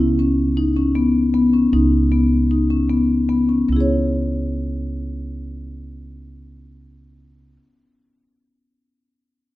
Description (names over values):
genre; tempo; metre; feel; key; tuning
contemporary instrumental, chamber music in an uneven meter; 151 BPM; 5/4; straight; C# minor; A4 = 438 Hz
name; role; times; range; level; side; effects
marimba with soft mallets; arpeggios; 0.0-7.7 s; B3 to C#5; -17 LUFS; left 2 dB; none
upright bass; bass; 0.0-7.6 s; C#2; -22 LUFS; right 2 dB; none
room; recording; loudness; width
moderate recital hall reverb, RT60 1.6 s; close, detailed microphones; -16 LUFS; side -16 dB against mid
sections
0.0-3.7 A section; 3.7-7.7 B section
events
slowing down 0.6-3.7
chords
0.0 C#7(no3); 1.7 B/C#; 3.7 C#m